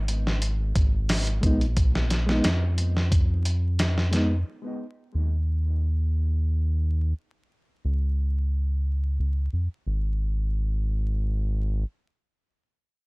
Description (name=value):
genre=trip hop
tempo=89 BPM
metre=4/4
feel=swing 54% on 16ths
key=G# dorian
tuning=A4 = 442 Hz
part: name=round analog bass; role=bass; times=0.0-11.8 s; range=G#1 to E#2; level=-24 LUFS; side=equal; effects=none
part: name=dusty soul sampler-style drum kit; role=drums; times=0.1-4.3 s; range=hi-hat, kick drum, snare drum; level=-25 LUFS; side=equal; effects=none
part: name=reed electric piano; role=accompaniment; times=1.4-4.3 s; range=G#3 to D#4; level=-29 LUFS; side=equal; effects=tremolo, tape echo
room=digital ambience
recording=dry, gritty hardware recording, vinyl crackle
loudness=-23 LUFS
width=side -28 dB against mid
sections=0.0-9.9 A section; 9.9-12.6 B section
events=filter sweep on analog synth bass 0.0-9.9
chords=0.0 G#m; 4.5 N.C.